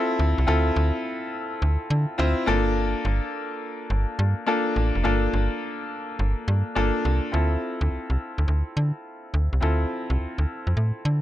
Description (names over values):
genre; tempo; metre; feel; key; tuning
R&B, new jack swing; 105 BPM; 4/4; swing 66% on 16ths; D minor; A4 = 440 Hz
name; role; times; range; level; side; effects
clear concert grand piano; accompaniment; 0.0-11.2 s; Bb3 to C5; -26 LUFS; left 2 dB; none
slap-like FM bass; bass; 0.2-11.2 s; F1 to D3; -22 LUFS; equal; none
room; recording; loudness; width
little or no reverb; none; -22 LUFS; side -14 dB against mid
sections
0.0-7.3 A section; 7.3-11.2 B section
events
none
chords
0.0 Dm7; 2.5 Gm9; 7.3 Dm7